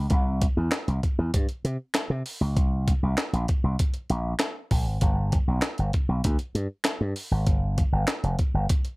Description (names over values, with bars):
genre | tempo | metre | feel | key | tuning
funk | 98 BPM | 4/4 | straight | unclear | A4 = 441 Hz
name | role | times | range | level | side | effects
slap bass with an envelope filter | bass | 0.0-8.7 s | F1 to C3 | -25 LUFS | equal | none
breakbeat sampler-style drum kit | drums | 0.1-9.0 s | handclaps, hi-hat, kick drum, snare drum | -25 LUFS | equal | none
room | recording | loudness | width
little or no reverb | none | -23 LUFS | side -25 dB against mid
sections
0.0-9.0 A section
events
none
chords
none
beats
| 0.11 0.73 1.34 1.95 | 2.57 3.18 3.79 4.41 | 5.02 5.63 6.25 6.86 | 7.47 8.08 8.70